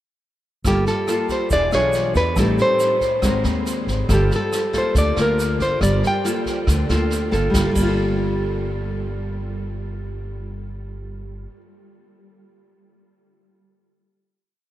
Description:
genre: bossa nova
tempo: 139 BPM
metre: 4/4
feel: straight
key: G minor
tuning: A4 = 439 Hz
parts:
  - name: upright bass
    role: bass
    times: 0.6-11.4 s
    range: E1 to E2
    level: -23 LUFS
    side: equal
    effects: none
  - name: vintage brush drum kit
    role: drums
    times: 0.6-7.9 s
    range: crash cymbal, kick drum, rim click, snare drum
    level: -27 LUFS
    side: equal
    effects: none
  - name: nylon-string guitar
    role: melody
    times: 0.7-6.9 s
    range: G4 to G5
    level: -22 LUFS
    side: equal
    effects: none
  - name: nylon-string guitar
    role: accompaniment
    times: 0.7-11.6 s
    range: A2 to Bb4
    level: -23 LUFS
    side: equal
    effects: none
  - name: egg shaker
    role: percussion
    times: 0.7-7.9 s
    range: none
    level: -37 LUFS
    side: right 6 dB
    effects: none
room: moderate huge ambient reverb, RT60 7.9 s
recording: in a vast, echoing space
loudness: -18 LUFS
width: side -14 dB against mid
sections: 0.7-7.5 A section; 7.5-11.0 final chord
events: none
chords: 0.7 Gm9; 1.5 E7b9; 2.4 Am7b5; 3.2 Ab9; 4.1 Gm9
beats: | 0.66 1.09 1.52 1.95 | 2.38 2.81 3.24 3.67 | 4.10 4.53 4.96 5.39 | 5.82 6.25 6.68 7.11 | 7.54 7.97 8.41 8.84 | 9.27 9.70 10.13 10.56

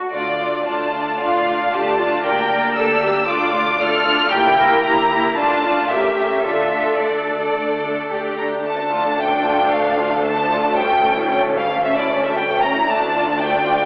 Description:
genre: quick classical-period movement for string orchestra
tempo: 114 BPM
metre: 4/4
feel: rubato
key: D minor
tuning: A4 = 441 Hz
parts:
  - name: rich studio cello section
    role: bass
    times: 0.0-13.9 s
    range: D2 to Bb4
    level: -22 LUFS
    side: equal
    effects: none
  - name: rich studio violin section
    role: melody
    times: 0.1-13.9 s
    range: D5 to F6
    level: -19 LUFS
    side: equal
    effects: none
  - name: rich symphonic violin section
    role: second line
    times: 0.1-13.9 s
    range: G3 to D5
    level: -22 LUFS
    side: equal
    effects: none
  - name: rich studio viola section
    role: accompaniment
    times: 0.1-13.9 s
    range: A3 to E4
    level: -22 LUFS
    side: equal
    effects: none
  - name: rich studio double bass section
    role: bass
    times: 0.1-13.9 s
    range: G1 to D2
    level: -34 LUFS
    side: equal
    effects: none
room: wet scoring stage reverb, RT60 1.7 s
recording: heard from further back in the room, telephone sound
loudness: -15 LUFS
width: side -34 dB against mid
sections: 0.0-8.7 A section; 8.7-13.9 B section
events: none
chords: 0.1 Dm; 2.2 Gm/D; 3.3 Dm; 4.3 Edim/G; 5.4 Dm/A; 5.9 A7b9; 6.4 Dm; 10.8 A7/D; 12.9 Dm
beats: | 0.14 0.67 1.20 1.73 | 2.25 2.77 3.29 3.80 | 4.32 4.84 5.36 5.90 | 6.44 7.00 7.55 8.11 | 8.65 9.19 9.72 10.25 | 10.78 11.31 11.84 12.37 | 12.89 13.41

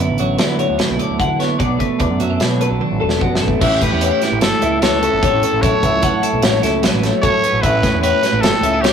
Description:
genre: math rock and midwest emo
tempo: 149 BPM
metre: 5/4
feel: straight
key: unclear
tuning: A4 = 439 Hz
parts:
  - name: twelve-string electric guitar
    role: accompaniment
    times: 0.0-8.9 s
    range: F#2 to A4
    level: -20 LUFS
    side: right 6 dB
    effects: none
  - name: twelve-string electric guitar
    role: arpeggios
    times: 0.0-8.9 s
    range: F#4 to F#5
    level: -20 LUFS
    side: left 7 dB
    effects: tape echo
  - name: growling picked electric bass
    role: bass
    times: 0.0-8.9 s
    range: E1 to D3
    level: -21 LUFS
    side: equal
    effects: overdrive
  - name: modern studio drum kit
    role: drums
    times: 0.2-8.9 s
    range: crash cymbal, hi-hat, kick drum, snare drum, toms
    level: -19 LUFS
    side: equal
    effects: none
  - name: growling trumpet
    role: melody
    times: 3.6-8.9 s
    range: G4 to C#5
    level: -19 LUFS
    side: right 1 dB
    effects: tape echo
room: moderate studio reverb, RT60 0.5 s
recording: rough rehearsal-room recording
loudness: -13 LUFS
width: side -7 dB against mid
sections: 0.0-3.6 A section; 3.6-8.9 B section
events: drum fill 2.8-3.6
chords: 0.0 D69; 1.6 Bm7; 3.6 A9; 5.6 F#m7/A; 7.6 A9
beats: 0.39 0.79 1.20 | 1.60 2.00 2.41 2.81 3.21 | 3.62 4.02 4.42 4.83 5.23 | 5.63 6.03 6.43 6.83 7.23 | 7.63 8.04 8.44 8.84

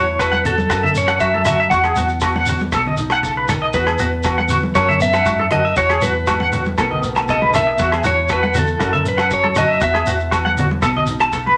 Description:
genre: highlife guitar band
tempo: 118 BPM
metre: 4/4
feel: straight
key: unclear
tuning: A4 = 443 Hz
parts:
  - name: clean electric guitar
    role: melody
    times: 0.0-10.3 s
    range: A4 to F#5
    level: -21 LUFS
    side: equal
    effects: tremolo
  - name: nylon-string guitar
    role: accompaniment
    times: 0.0-11.6 s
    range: E2 to F#4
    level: -28 LUFS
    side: equal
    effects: none
  - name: deep dub fingered electric bass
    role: bass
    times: 0.0-11.6 s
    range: B1 to F#2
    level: -27 LUFS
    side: equal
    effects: none
  - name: clean electric guitar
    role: arpeggios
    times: 0.2-11.5 s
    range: F#4 to A5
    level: -22 LUFS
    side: equal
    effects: tremolo
  - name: damped 70s drum kit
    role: drums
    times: 0.2-11.5 s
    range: hi-hat, kick drum, rim click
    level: -27 LUFS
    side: equal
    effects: none
  - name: agogo bells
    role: percussion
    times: 0.2-11.3 s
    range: none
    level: -28 LUFS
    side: equal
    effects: none
  - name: shekere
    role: percussion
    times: 0.2-11.4 s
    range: none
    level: -30 LUFS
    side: equal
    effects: none
  - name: congas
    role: percussion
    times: 0.3-11.6 s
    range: none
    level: -27 LUFS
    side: equal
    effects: none
room: moderate studio reverb, RT60 0.6 s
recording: none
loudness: -17 LUFS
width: mono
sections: 0.0-11.6 A section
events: none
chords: 0.0 Esus2; 0.7 F#m7; 1.7 Esus2; 2.7 B7; 3.7 Esus2; 4.8 F#7(no3); 5.8 Eadd9; 6.8 B7; 7.8 Esus2; 8.8 F#m7; 9.8 Esus2; 10.8 B7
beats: 0.19 0.70 1.21 | 1.72 2.22 2.73 3.23 | 3.74 4.25 4.75 5.26 | 5.77 6.28 6.78 7.29 | 7.79 8.30 8.81 9.31 | 9.82 10.33 10.83 11.34

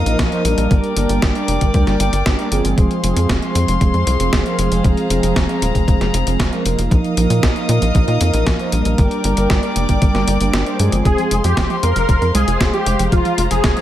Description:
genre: italo disco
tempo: 116 BPM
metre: 4/4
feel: straight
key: F dorian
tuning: A4 = 440 Hz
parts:
  - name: dark chamber string section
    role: sustained chords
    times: 0.0-13.8 s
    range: Ab3 to Eb6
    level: -22 LUFS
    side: left 2 dB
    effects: none
  - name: mellow synth brass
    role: stabs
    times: 0.0-11.3 s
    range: F3 to C5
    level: -20 LUFS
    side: right 3 dB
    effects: chorus, tape echo
  - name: tight sequencer bass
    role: bass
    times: 0.0-13.7 s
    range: Eb1 to Bb2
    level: -18 LUFS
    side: equal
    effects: none
  - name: clean 12-bit digital drum machine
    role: drums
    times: 0.1-13.8 s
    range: hi-hat, snare drum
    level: -23 LUFS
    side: equal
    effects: gated reverb
  - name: electronic kick drum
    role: drums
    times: 0.2-13.7 s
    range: none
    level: -16 LUFS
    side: equal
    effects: none
  - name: wide unison lead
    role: melody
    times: 11.1-13.8 s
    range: F4 to Bb4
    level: -19 LUFS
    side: equal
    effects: ensemble chorus
  - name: warbly dusty pluck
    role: arpeggios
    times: 11.1-13.8 s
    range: F3 to Ab3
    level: -24 LUFS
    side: right 3 dB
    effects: chorus, tape echo
room: light reverb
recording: none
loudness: -14 LUFS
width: side -12 dB against mid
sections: 0.0-13.8 A section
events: kick drops out 10.5-11.1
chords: 0.0 Bbsus4; 0.7 Gm; 2.8 Fm; 6.9 Bbsus4; 9.0 Gm; 11.1 Fm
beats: 0.19 | 0.71 1.23 1.74 2.26 | 2.78 3.29 3.81 4.33 | 4.85 5.36 5.88 6.40 | 6.92 7.43 7.95 8.47 | 8.98 9.50 10.02 10.54 | 11.05 11.57 12.09 12.60 | 13.12 13.64

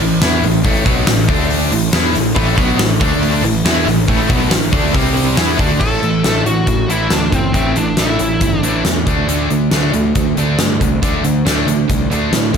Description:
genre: hard rock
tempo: 138 BPM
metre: 4/4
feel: straight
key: A dorian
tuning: A4 = 440 Hz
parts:
  - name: biting overdriven guitar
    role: riff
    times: 0.0-12.6 s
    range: A2 to E4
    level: -20 LUFS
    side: right 12 dB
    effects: none
  - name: high-gain distorted guitar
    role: riff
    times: 0.0-12.6 s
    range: A2 to E4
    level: -20 LUFS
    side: left 14 dB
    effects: distortion
  - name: fuzz picked electric bass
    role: bass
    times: 0.0-12.6 s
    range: G1 to A2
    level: -19 LUFS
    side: equal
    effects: overdrive
  - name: huge arena drum kit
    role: drums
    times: 0.0-12.6 s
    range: crash cymbal, hi-hat, kick drum, snare drum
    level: -17 LUFS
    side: left 1 dB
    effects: none
  - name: cranked stack guitar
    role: riff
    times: 2.4-5.8 s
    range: A2 to E4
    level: -20 LUFS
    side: equal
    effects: overdrive, tremolo
  - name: high-gain lead guitar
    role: melody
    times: 5.8-8.8 s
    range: C4 to A4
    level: -19 LUFS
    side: equal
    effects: distortion
room: light reverb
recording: none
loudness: -12 LUFS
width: side -7 dB against mid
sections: 0.0-5.8 A section; 5.8-12.6 B section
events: none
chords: 0.0 A5; 1.3 D5; 1.7 A5; 3.0 D5; 3.4 A5; 4.9 C5; 5.4 A5; 9.1 D5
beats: 0.22 | 0.65 1.08 1.50 1.93 | 2.36 2.79 3.22 3.65 | 4.08 4.51 4.94 5.37 | 5.81 6.24 6.67 7.11 | 7.54 7.98 8.41 8.85 | 9.28 9.72 10.15 10.59 | 11.02 11.46 11.89 12.33

